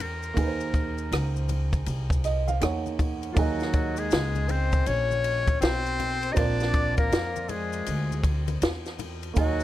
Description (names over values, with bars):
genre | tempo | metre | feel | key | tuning
hip hop, jazz-hop | 80 BPM | 4/4 | swing 63% on 16ths | Eb dorian | A4 = 440 Hz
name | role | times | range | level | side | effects
trumpet with metal mute | melody | 0.0-9.6 s | F4 to Eb5 | -33 LUFS | left 1 dB | plate reverb, tape echo
warm upright piano | accompaniment | 0.0-9.6 s | Bb3 to Gb5 | -32 LUFS | right 6 dB | none
upright bass | bass | 0.0-9.6 s | Bb1 to F2 | -29 LUFS | equal | none
compact cocktail drum kit | drums | 0.0-9.6 s | hi-hat, kick drum, ride cymbal, rim click, snare drum | -28 LUFS | equal | none
congas and maracas | percussion | 0.0-9.6 s | none | -39 LUFS | left 9 dB | none
breathy tenor saxophone | second line | 3.3-9.6 s | F3 to Eb4 | -31 LUFS | left 6 dB | none
room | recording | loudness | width
light reverb | none | -24 LUFS | side -14 dB against mid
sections
0.0-3.4 A section; 3.4-9.6 B section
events
upright piano fill 1.9-3.4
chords
0.0 Ebm7; 3.4 Eb5; 6.4 Bb7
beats
| 0.37 1.12 1.87 2.62 | 3.37 4.12 4.87 5.62 | 6.37 7.12 7.87 8.62 | 9.37